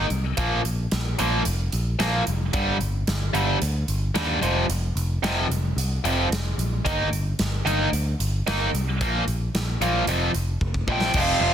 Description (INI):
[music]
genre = hard rock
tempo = 112 BPM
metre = 4/4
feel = straight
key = unclear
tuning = A4 = 438 Hz
[part]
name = biting overdriven guitar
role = riff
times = 0.0-11.5 s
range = F2 to Eb4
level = -24 LUFS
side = right 1 dB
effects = none
[part]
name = picked electric bass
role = bass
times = 0.0-11.5 s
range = F1 to Eb2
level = -25 LUFS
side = equal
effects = none
[part]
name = big rock drum kit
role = drums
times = 0.1-11.3 s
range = crash cymbal, hi-hat, kick drum, snare drum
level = -29 LUFS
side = equal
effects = none
[part]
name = bluesy overdriven lead guitar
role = melody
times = 10.9-11.5 s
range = F5 to G5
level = -24 LUFS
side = right 1 dB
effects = distortion, slapback echo
[sound]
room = light reverb, studio ambience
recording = dense, heavily limited modern master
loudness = -21 LUFS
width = side -9 dB against mid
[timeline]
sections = 0.0-11.1 A section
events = drum fill 10.6-11.1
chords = 0.4 Bb5; 2.5 G5; 4.4 F5; 6.9 Eb/G; 9.0 Bb5; 10.1 F5